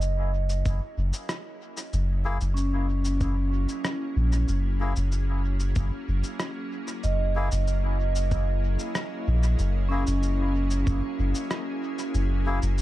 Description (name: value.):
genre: ambient dub.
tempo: 94 BPM.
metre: 4/4.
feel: straight.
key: F# mixolydian.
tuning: A4 = 440 Hz.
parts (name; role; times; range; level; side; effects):
soft additive organ-like pad; sustained chords; 0.0-12.8 s; F#3 to G#4; -36 LUFS; equal; ensemble chorus, built-in reverb.
vibraphone with medium mallets; arpeggios; 0.0-12.8 s; C#4 to D#5; -32 LUFS; right 2 dB; analog delay.
soft dub sub bass; bass; 0.0-12.8 s; F#1 to A#1; -24 LUFS; equal; none.
electronic cabasa and rim click; drums; 0.0-12.8 s; none; -35 LUFS; equal; overdrive, small room ambience, dub echo.
electronic kick drum; drums; 0.7-11.0 s; none; -29 LUFS; equal; overdrive, small room ambience.
melodica; stabs; 2.2-12.6 s; A#3 to G#4; -37 LUFS; left 4 dB; dub echo.
room: little or no reverb.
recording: echo-heavy mix.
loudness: -24 LUFS.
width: side -15 dB against mid.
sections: 0.0-12.8 A section.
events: fade-in on ambient pad 0.0-12.8.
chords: 0.0 F#9.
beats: 0.02 0.66 1.29 | 1.93 2.57 3.21 3.85 | 4.49 5.12 5.76 6.40 | 7.04 7.68 8.32 8.95 | 9.59 10.23 10.87 11.51 | 12.15 12.78.